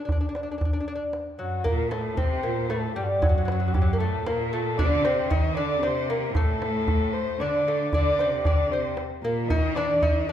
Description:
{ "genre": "Persian modal ensemble", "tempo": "115 BPM", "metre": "3/4", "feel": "straight", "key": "D dastgah homayun", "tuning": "A4 = 439 Hz", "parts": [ { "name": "lute", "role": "melody", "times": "0.0-10.3 s", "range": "F#3 to Eb4+45c", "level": "-27 LUFS", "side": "equal", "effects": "none" }, { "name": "tombak", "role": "percussion", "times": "0.1-10.1 s", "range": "none", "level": "-26 LUFS", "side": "equal", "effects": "none" }, { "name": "bright studio cello section", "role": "second line", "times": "1.4-10.3 s", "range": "F#2 to Eb3+45c", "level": "-28 LUFS", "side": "right 2 dB", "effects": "none" }, { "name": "dark kamancheh", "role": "second line", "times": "1.4-10.3 s", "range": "F#4 to E5-49c", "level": "-30 LUFS", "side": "left 5 dB", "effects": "none" } ], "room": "wet recital hall reverb, RT60 1.4 s", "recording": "minimal, uncompressed stereo recording", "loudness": "-22 LUFS", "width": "side -10 dB against mid", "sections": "0.0-1.6 A section; 1.6-10.3 B section", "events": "none", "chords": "none" }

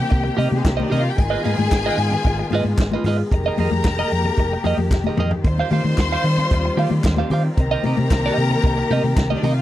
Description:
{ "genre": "disco", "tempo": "113 BPM", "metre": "4/4", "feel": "straight", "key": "unclear", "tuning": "A4 = 437 Hz", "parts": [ { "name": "clear studio string section", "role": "second line", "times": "0.0-9.6 s", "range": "Ab3 to C6", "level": "-25 LUFS", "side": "left 4 dB", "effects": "none" }, { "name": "dark studio string section", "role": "sustained chords", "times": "0.0-9.6 s", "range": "Eb3 to G4", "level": "-26 LUFS", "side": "left 2 dB", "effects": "none" }, { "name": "clean electric guitar", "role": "accompaniment", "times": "0.1-9.6 s", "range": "F4 to F5", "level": "-24 LUFS", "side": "right 5 dB", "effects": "phaser" }, { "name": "hollow-body short-scale fingered electric bass", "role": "bass", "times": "0.1-9.6 s", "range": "F1 to Eb3", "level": "-21 LUFS", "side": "equal", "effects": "none" }, { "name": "vintage drum kit", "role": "drums", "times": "0.1-9.6 s", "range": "hi-hat, kick drum, snare drum, toms", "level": "-19 LUFS", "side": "equal", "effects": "none" }, { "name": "congas", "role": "percussion", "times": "0.3-9.6 s", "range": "none", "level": "-26 LUFS", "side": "left 6 dB", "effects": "none" }, { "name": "group handclap", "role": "percussion", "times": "0.7-9.3 s", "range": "none", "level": "-33 LUFS", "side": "left 4 dB", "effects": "none" } ], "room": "little or no reverb", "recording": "dry, close 1970s-style studio recording", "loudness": "-17 LUFS", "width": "side -13 dB against mid", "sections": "0.0-9.6 A section", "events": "drum fill 4.9-5.4", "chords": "0.0 Cm7; 1.2 Abm6; 3.3 Fm11; 5.4 Eb69; 7.6 Cm7" }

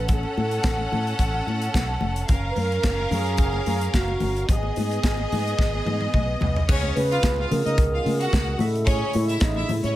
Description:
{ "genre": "disco", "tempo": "109 BPM", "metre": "4/4", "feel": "straight", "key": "unclear", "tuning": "A4 = 440 Hz", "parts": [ { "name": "mellow wooden-headed alto flute", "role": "melody", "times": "0.0-10.0 s", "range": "D#4 to B4", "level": "-28 LUFS", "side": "right 1 dB", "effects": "none" }, { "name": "clear studio string section", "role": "second line", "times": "0.0-9.9 s", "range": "B3 to F#5", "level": "-28 LUFS", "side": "equal", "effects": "none" }, { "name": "fingered electric bass with an envelope filter", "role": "bass", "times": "0.0-9.9 s", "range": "E#1 to C#3", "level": "-26 LUFS", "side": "equal", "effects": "none" }, { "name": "modern studio drum kit", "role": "drums", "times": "0.1-10.0 s", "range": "crash cymbal, hi-hat, kick drum, snare drum, toms", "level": "-24 LUFS", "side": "equal", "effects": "gated reverb" }, { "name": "congas", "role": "percussion", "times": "0.1-10.0 s", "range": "none", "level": "-31 LUFS", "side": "left 4 dB", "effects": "none" }, { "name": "percussive tonewheel organ", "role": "sustained chords", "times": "6.7-10.0 s", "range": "C#3 to G#4", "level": "-33 LUFS", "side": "equal", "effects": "overdrive, slow rotary speaker" } ], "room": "light reverb, small room ambience", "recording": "none", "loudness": "-20 LUFS", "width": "side -14 dB against mid", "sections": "0.0-6.7 A section; 6.7-10.0 B section", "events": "drum fill 5.6-6.7", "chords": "0.0 A; 2.3 F#maj7; 4.5 G#m; 6.7 C#7; 8.6 Amaj7" }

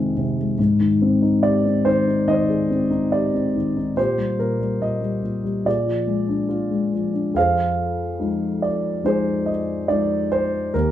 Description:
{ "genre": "acoustic folk-pop ballad", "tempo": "71 BPM", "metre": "4/4", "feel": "straight", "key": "unclear", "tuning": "A4 = 440 Hz", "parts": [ { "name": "dark concert grand piano", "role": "solo", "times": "0.0-10.9 s", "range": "Eb2 to F5", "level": "-18 LUFS", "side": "left 1 dB", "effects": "none" } ], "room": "wet studio reverb, RT60 0.6 s", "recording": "band playing live in one room", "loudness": "-18 LUFS", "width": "side -12 dB against mid", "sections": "0.0-7.4 A section; 7.4-10.9 B section", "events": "none", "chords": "0.0 Fm7; 0.6 Abmaj7; 4.0 Eb/Bb; 5.7 Bb7; 7.4 Fm7" }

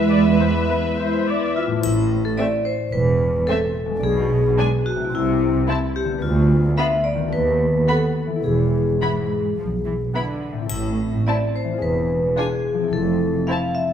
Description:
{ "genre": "cinematic, playful, whimsical film cue", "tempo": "108 BPM", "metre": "4/4", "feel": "straight", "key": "A minor", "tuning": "A4 = 440 Hz", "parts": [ { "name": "muted chamber violin section", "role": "melody", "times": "0.0-13.6 s", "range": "E5 to B5", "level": "-29 LUFS", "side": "left 3 dB", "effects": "none" }, { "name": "muted studio violin section", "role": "second line", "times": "0.0-13.6 s", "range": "C4 to B4", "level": "-30 LUFS", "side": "left 1 dB", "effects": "none" }, { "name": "muted studio viola section", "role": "accompaniment", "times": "0.0-13.6 s", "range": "G#3 to E5", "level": "-30 LUFS", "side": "right 1 dB", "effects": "none" }, { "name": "concert harp", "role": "arpeggios", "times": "0.0-13.9 s", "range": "A2 to D5", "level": "-26 LUFS", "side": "left 9 dB", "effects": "none" }, { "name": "muted studio cello section", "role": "bass", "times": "0.0-13.4 s", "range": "D2 to G#3", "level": "-24 LUFS", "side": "right 4 dB", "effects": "none" }, { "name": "muted studio double bass section", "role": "bass", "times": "0.0-13.4 s", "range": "E1 to E2", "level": "-24 LUFS", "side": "right 3 dB", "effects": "none" }, { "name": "vibraphone with medium hard mallets", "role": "melody", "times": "1.6-13.9 s", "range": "E4 to F5", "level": "-22 LUFS", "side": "left 2 dB", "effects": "none" }, { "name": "triangle", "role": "percussion", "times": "1.8-2.9, 10.7-11.8 s", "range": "none", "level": "-35 LUFS", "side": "left 4 dB", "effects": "none" } ], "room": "moderate scoring stage reverb, RT60 1.7 s", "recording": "none", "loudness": "-18 LUFS", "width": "side -9 dB against mid", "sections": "0.0-1.8 A section; 1.8-13.9 B section", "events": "none", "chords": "0.0 E; 4.0 G#dim/B; 5.1 Am/C; 6.2 Bdim/D; 7.3 B7/D#; 8.4 E; 10.7 Am; 11.8 E7b9; 12.9 Fmaj7" }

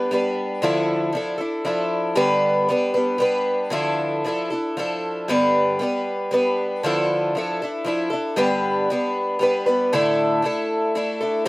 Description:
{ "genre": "rock", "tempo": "116 BPM", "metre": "3/4", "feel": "straight", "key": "D dorian", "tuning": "A4 = 444 Hz", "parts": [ { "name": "picked twelve-string acoustic guitar", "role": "solo", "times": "0.0-11.5 s", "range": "G2 to B4", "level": "-19 LUFS", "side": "equal", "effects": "none" } ], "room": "light reverb", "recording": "recorded outdoors, with no room sound", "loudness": "-19 LUFS", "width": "side -21 dB against mid", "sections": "0.0-11.5 A section", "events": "none", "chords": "0.0 G; 0.6 Dmadd9; 2.2 G; 3.7 Dmadd9; 5.3 G; 6.8 Dmadd9; 8.4 G; 9.9 Asus4" }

